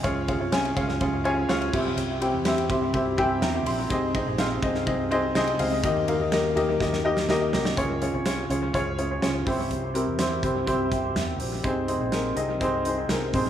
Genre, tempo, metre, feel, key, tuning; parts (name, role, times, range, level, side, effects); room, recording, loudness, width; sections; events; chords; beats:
piano-driven pop; 124 BPM; 4/4; straight; A4 = 439 Hz
dark upright piano; accompaniment; 0.0-13.5 s; C3 to C6; -24 LUFS; left 1 dB; analog delay
fingered electric bass; bass; 0.0-13.5 s; Bb1 to E2; -31 LUFS; right 1 dB
modern studio drum kit; drums; 0.0-13.4 s; crash cymbal, hi-hat, kick drum, ride cymbal, snare drum; -30 LUFS; right 1 dB; analog delay
moderate echo chamber reverb, RT60 2.0 s; echo-heavy mix, studio ambience; -23 LUFS; side -10 dB against mid
0.0-7.8 A section; 7.8-13.5 B section
upright piano fill 2.9-3.9; drum fill 6.8-7.8
0.0 Db; 1.7 C; 3.9 Ab; 5.8 Eb; 7.8 Db; 9.5 C; 11.6 Ab
| 0.04 0.53 1.01 1.49 | 1.97 2.46 2.94 3.42 | 3.91 4.39 4.87 5.36 | 5.84 6.32 6.80 7.29 | 7.77 8.26 8.74 9.22 | 9.71 10.19 10.68 11.16 | 11.64 12.13 12.61 13.10